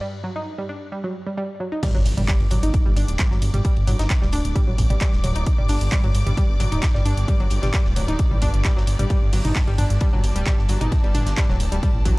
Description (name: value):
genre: driving peak-time techno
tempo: 132 BPM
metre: 4/4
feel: straight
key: unclear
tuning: A4 = 440 Hz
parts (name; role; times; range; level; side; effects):
- analog pluck; riff; 0.0-12.1 s; F#3 to Eb4; -28 LUFS; equal; chorus, tube saturation, cassette tape, sidechain pumping, tape echo
- swarming drone; drone; 2.9-12.2 s; G2; -33 LUFS; equal; built-in reverb, sidechain pumping
- electronic kick drum; drums; 1.8-12.2 s; none; -20 LUFS; equal; none
- techno drum kit; drums; 1.8-12.2 s; crash cymbal, handclaps, hi-hat, toms; -28 LUFS; equal; sidechain pumping on hats, sidechain pumping on toms, sidechain pumping on cymbals
- tight metal drum kit; drums; 1.8-12.2 s; hi-hat, ride cymbal, snare drum; -40 LUFS; left 2 dB; sidechain pumping on cymbals, high-pass filter on cymbals, sidechain pumping on hats, high-pass filter on hats, high-pass filter on snare, high-pass filter on room
- impact; sound effects; 1.8-3.6 s; none; -28 LUFS; equal; none
- rich studio string section; texture; 1.8-12.2 s; G3 to D6; -34 LUFS; left 2 dB; sidechain pumping
- dark detuned saw bass; bass; 1.9-12.1 s; D1 to A1; -22 LUFS; equal; sidechain pumping
room: small room ambience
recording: dry, gritty hardware recording, cassette tape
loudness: -18 LUFS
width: side -23 dB against mid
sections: 0.0-1.8 A section; 1.8-12.2 B section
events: filter sweep on synth arpeggio sound 0.0-1.8; break 0.0-1.8; drop 1.8-12.2; impact 1.8-3.6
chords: 0.0 G5